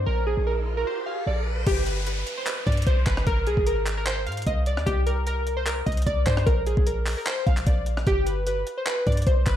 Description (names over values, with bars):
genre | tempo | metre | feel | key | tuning
hip hop, trap | 150 BPM | 4/4 | half-time | unclear | A4 = 440 Hz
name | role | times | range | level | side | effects
glassy digital keys | melody | 0.0-9.6 s | G4 to F5 | -27 LUFS | equal | chorus, low-pass filter, ping-pong delay
warm 808-style bass | bass | 0.0-9.6 s | G1 to Ab2 | -26 LUFS | equal | none
riser and downlifter | sound effects | 0.0-4.9 s | none | -35 LUFS | right 1 dB | none
breakbeat sampler-style drum kit | drums | 1.7-9.6 s | crash cymbal, handclaps, hi-hat, kick drum, rim click | -25 LUFS | equal | none
room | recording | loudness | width
moderate plate reverb, RT60 0.9 s, digital ambience | dreamy mix soaked in reverb | -22 LUFS | side -11 dB against mid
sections
0.0-1.7 A section; 1.7-9.6 B section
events
riser 0.0-1.7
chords
0.1 N.C.; 1.7 G; 3.3 Ab; 4.9 C5; 6.5 N.C.; 8.1 G